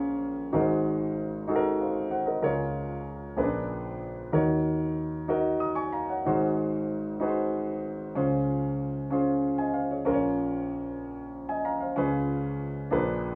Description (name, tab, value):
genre	gospel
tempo	63 BPM (dotted quarters)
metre	6/8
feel	straight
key	Db major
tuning	A4 = 445 Hz
part	warm grand piano	solo	0.0-13.3 s	Ab1 to Eb6	-29 LUFS	equal	none
room	studio ambience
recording	rough home demo mix, studio reverb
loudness	-29 LUFS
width	mono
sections	0.0-10.1 A section; 10.1-13.3 B section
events	none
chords	0.0 Bbm7; 0.5 Ab7; 2.4 Db6; 3.4 Bb7b9; 4.3 Ebm7; 6.2 Ab7; 8.2 Dbmaj7; 10.1 Bbm; 12.0 Db7